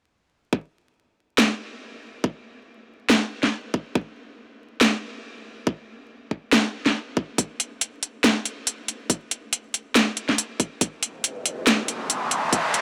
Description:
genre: deep dubstep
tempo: 140 BPM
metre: 4/4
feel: swing 56% on 16ths, half-time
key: none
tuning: none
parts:
  - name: electronic kick drum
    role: drums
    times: 0.5-12.6 s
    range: none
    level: -26 LUFS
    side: equal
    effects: high-pass filter on kick, high-pass filter on room
  - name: garage drum kit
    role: drums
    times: 1.4-12.8 s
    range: hi-hat, snare drum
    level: -23 LUFS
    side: equal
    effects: none
  - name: riser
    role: sound effects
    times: 11.3-12.8 s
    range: none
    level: -28 LUFS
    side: equal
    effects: none
room: light reverb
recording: dry, gritty hardware recording, vinyl crackle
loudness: -24 LUFS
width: mono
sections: 0.5-12.8 A section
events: riser 11.3-12.8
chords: none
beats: | 0.53 0.95 1.38 1.81 | 2.24 2.67 3.10 3.53 | 3.96 4.38 4.81 5.24 | 5.67 6.10 6.53 6.96 | 7.38 7.81 8.24 8.67 | 9.10 9.53 9.96 10.38 | 10.81 11.24 11.67 12.10 | 12.53

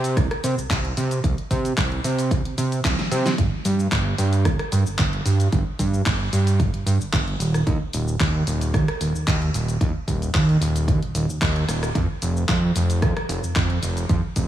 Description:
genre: nu-disco, nu disco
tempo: 112 BPM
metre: 4/4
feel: straight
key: unclear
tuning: A4 = 438 Hz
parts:
  - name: fat analog bass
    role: bass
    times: 0.0-14.5 s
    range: Eb1 to C3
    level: -21 LUFS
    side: right 1 dB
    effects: none
  - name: pop drum kit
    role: drums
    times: 0.0-14.5 s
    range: cabasa, handclaps, hi-hat, rim click, snare drum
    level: -27 LUFS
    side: equal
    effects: none
  - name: electronic kick drum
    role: drums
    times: 0.2-14.5 s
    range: none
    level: -23 LUFS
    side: equal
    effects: none
room: light reverb, digital ambience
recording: studio ambience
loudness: -19 LUFS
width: side -12 dB against mid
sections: 0.0-14.5 A section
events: drum fill 2.8-3.4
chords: none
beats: 0.17 0.70 | 1.24 1.77 2.31 2.85 | 3.38 3.92 4.45 4.99 | 5.52 6.06 6.60 7.13 | 7.67 8.20 8.74 9.27 | 9.81 10.35 10.88 11.42 | 11.95 12.49 13.02 13.56 | 14.10

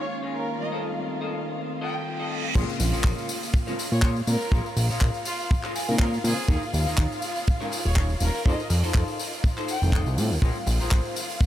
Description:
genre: nu-disco, nu disco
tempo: 122 BPM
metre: 4/4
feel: swing 55% on 16ths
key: Bb dorian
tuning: A4 = 438 Hz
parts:
  - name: rich chamber violin section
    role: melody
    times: 0.0-10.1 s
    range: F4 to G5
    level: -35 LUFS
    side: equal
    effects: tape echo
  - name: mellow synth brass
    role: accompaniment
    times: 0.0-10.3 s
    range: Db3 to F4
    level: -34 LUFS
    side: left 1 dB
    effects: chorus, cassette tape, sidechain pumping, tape echo
  - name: dark symphonic string section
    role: sustained chords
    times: 0.0-11.5 s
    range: F4 to F5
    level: -35 LUFS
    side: left 2 dB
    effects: sidechain pumping
  - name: semi-hollow electric guitar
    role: riff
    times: 0.0-11.2 s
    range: Eb4 to Ab5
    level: -34 LUFS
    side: left 2 dB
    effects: wide subtle chorus, tape echo
  - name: reverse cymbal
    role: sound effects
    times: 2.0-2.6 s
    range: none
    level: -36 LUFS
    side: right 6 dB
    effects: none
  - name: fat analog bass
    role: bass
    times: 2.6-11.0 s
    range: Eb1 to Bb2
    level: -24 LUFS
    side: equal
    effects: none
  - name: kick drum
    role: drums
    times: 2.6-11.5 s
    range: none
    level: -23 LUFS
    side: equal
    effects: none
  - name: tight funk drum kit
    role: drums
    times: 2.6-11.5 s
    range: crash cymbal, handclaps, hi-hat, tambourine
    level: -31 LUFS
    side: equal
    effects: none
room: light reverb, small room ambience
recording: none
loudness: -23 LUFS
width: side -12 dB against mid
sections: 0.0-2.6 A section; 2.6-11.5 B section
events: reverse cymbal 2.0-2.6; drop 2.6-11.5; clean electric guitar fill 5.5-6.5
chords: 0.0 Eb7sus4; 0.6 F7; 2.6 Bbm7; 6.5 Eb7sus4; 8.5 F7; 10.4 Bbm7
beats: 0.10 | 0.59 1.08 1.57 2.06 | 2.55 3.05 3.54 4.03 | 4.52 5.01 5.50 6.00 | 6.49 6.98 7.47 7.96 | 8.46 8.95 9.44 9.93 | 10.42 10.91 11.41

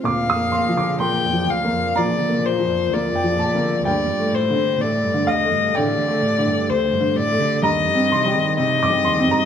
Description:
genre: neoclassical piano and strings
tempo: 63 BPM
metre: 4/4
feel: rubato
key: Bb major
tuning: A4 = 440 Hz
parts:
  - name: rich violin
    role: melody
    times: 0.0-9.5 s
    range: C5 to G5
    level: -20 LUFS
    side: left 4 dB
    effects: none
  - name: rich cello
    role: second line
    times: 0.0-9.5 s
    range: D2 to Eb3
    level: -27 LUFS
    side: right 6 dB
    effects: none
  - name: clear upright piano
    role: accompaniment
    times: 0.0-9.5 s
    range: G2 to Eb6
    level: -21 LUFS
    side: equal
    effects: none
  - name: warbly tape-like pad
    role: sustained chords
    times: 0.0-9.5 s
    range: A3 to D5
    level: -29 LUFS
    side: equal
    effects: chorus, built-in reverb
room: light reverb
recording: none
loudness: -17 LUFS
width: side -8 dB against mid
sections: 0.0-9.5 A section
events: none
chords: 0.0 Bb/D; 3.9 Gsus2/D; 7.6 Cm/Eb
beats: | 0.05 1.00 1.96 2.90 | 3.86 4.81 5.75 6.69 | 7.64 8.58

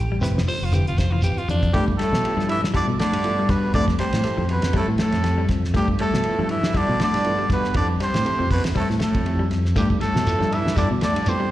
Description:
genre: afrobeat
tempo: 120 BPM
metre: 4/4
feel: swing 55% on 16ths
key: G mixolydian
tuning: A4 = 440 Hz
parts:
  - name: raspy alto saxophone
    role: melody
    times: 0.0-1.7 s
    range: D4 to C5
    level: -28 LUFS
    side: equal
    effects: slapback echo
  - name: fingered electric bass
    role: bass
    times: 0.0-11.5 s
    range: E1 to B2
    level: -23 LUFS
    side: equal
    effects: none
  - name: clean electric guitar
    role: arpeggios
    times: 0.1-11.5 s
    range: D3 to A3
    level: -27 LUFS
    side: left 4 dB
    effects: slapback echo
  - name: overdriven reed electric piano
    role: accompaniment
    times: 0.2-11.5 s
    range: B3 to C5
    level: -32 LUFS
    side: right 2 dB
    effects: fast tremolo, slapback echo
  - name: cloth-damped thuddy drum kit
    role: drums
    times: 0.2-11.4 s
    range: hi-hat, kick drum, ride cymbal, snare drum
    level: -25 LUFS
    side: equal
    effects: none
  - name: shekere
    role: percussion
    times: 0.2-1.6, 9.8-11.4 s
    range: none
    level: -25 LUFS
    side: equal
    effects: slapback echo
  - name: clear trumpet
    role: melody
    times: 1.7-11.5 s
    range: G4 to E5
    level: -26 LUFS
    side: equal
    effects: slapback echo
  - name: clear trombone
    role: second line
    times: 1.7-11.5 s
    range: G3 to E4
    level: -30 LUFS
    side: right 4 dB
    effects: slapback echo
  - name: raspy baritone saxophone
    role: second line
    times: 1.8-11.5 s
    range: G2 to E3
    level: -32 LUFS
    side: right 2 dB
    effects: slapback echo
room: little or no reverb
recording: live gig heard through the venue's PA, recital hall reverb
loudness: -19 LUFS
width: side -14 dB against mid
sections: 0.0-1.7 A section; 1.7-11.5 B section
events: alto saxophone solo 0.0-1.7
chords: 0.0 Fmaj7; 1.7 G13; 3.7 Fmaj7; 5.8 G13; 7.8 Fmaj7; 9.8 G13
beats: 0.23 0.74 1.24 | 1.74 2.24 2.74 3.25 | 3.75 4.25 4.75 5.25 | 5.75 6.25 6.76 7.26 | 7.76 8.26 8.76 9.26 | 9.76 10.26 10.76 11.26

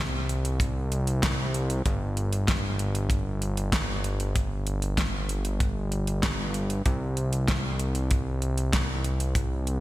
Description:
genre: synthwave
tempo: 96 BPM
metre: 4/4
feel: straight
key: unclear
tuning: A4 = 441 Hz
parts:
  - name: fat analog bass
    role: bass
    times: 0.0-9.8 s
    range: G1 to C2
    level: -27 LUFS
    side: equal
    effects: sidechain pumping
  - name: pop drum kit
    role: drums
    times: 0.3-9.8 s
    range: hi-hat, snare drum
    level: -30 LUFS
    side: equal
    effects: studio reverb, gated reverb
  - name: kick drum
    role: drums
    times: 0.6-9.5 s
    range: none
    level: -28 LUFS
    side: equal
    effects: studio reverb
room: light reverb, small room reverb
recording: bright 1980s-style digital production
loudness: -25 LUFS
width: side -16 dB against mid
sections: 0.0-9.8 A section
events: none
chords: none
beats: 0.61 1.23 | 1.86 2.48 3.11 3.73 | 4.36 4.98 5.61 6.23 | 6.86 7.48 8.11 8.73 | 9.36

